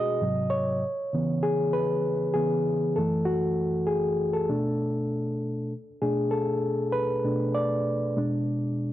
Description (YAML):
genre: soul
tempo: 98 BPM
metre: 4/4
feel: swing 54% on 16ths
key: B dorian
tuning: A4 = 439 Hz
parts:
  - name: reed electric piano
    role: solo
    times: 0.0-8.9 s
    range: F#2 to D#5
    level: -24 LUFS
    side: equal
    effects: none
room: light reverb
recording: none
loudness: -24 LUFS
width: side -13 dB against mid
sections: 0.0-5.7 A section; 5.7-8.9 B section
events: reed electric piano solo 0.0-5.7, 5.7-8.9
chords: 0.2 G#7; 0.8 C#m7; 3.0 F#m7; 4.5 Bm7; 8.2 Bm6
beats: 0.21 | 0.82 1.44 2.05 2.66 | 3.27 3.88 4.50 5.11 | 5.72 6.33 6.94 7.55 | 8.17 8.78